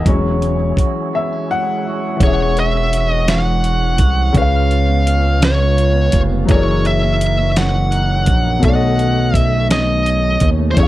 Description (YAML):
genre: slow six-eight R&B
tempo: 56 BPM (dotted quarters)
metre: 6/8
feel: straight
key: E major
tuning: A4 = 440 Hz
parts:
  - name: electric guitar at the edge of break-up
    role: second line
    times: 0.0-10.9 s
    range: F#2 to F#4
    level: -23 LUFS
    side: right 5 dB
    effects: none
  - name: warm grand piano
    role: accompaniment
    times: 0.0-10.9 s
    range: B2 to F#5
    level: -21 LUFS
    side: left 4 dB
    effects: none
  - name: tonewheel organ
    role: sustained chords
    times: 0.0-2.2, 10.8-10.9 s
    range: F#3 to C#5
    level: -27 LUFS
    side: right 1 dB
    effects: chorus vibrato, fast rotary speaker
  - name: smooth synth bass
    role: bass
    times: 0.0-10.9 s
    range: E1 to E2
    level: -17 LUFS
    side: equal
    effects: none
  - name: dusty soul sampler-style drum kit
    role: drums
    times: 0.1-10.9 s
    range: hi-hat, kick drum, snare drum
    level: -16 LUFS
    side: equal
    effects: none
  - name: high-gain lead guitar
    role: melody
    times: 2.2-10.9 s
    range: C5 to F#5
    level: -19 LUFS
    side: equal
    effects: distortion
room: little or no reverb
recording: none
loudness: -13 LUFS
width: side -15 dB against mid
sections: 0.0-2.2 A section; 2.2-10.9 B section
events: grand piano solo 0.0-2.2; break 1.1-2.2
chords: 0.1 E69; 4.3 C#7; 6.5 F#13; 8.6 B9